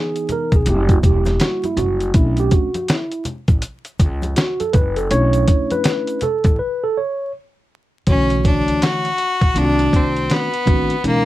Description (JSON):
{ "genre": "hip hop, jazz-hop", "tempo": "81 BPM", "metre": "4/4", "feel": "swing 62% on 16ths", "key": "unclear", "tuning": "A4 = 439 Hz", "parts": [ { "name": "mellow tine electric piano", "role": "accompaniment", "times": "0.0-11.2 s", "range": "B2 to C#5", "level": "-20 LUFS", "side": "right 2 dB", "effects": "auto-pan" }, { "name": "dusty soul sampler-style drum kit", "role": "drums", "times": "0.2-11.2 s", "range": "hi-hat, kick drum, snare drum", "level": "-17 LUFS", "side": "equal", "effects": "none" }, { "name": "egg shaker and congas", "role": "percussion", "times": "0.2-6.6 s", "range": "none", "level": "-30 LUFS", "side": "left 2 dB", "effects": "none" }, { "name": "upright bass", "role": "bass", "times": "0.5-11.2 s", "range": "E1 to C#2", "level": "-21 LUFS", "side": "equal", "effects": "none" }, { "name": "clear fiddle", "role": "melody", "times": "8.1-11.2 s", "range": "A#3 to F#4", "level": "-19 LUFS", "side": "left 2 dB", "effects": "slapback echo" } ], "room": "light reverb", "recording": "vinyl crackle", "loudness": "-15 LUFS", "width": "side -15 dB against mid", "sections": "0.0-8.1 A section; 8.1-11.2 B section", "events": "tine electric piano solo 0.0-8.1; break 6.6-8.1", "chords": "0.0 C#m7 (rootless); 0.7 F#7b9; 2.1 Bm11; 9.6 Cdim7" }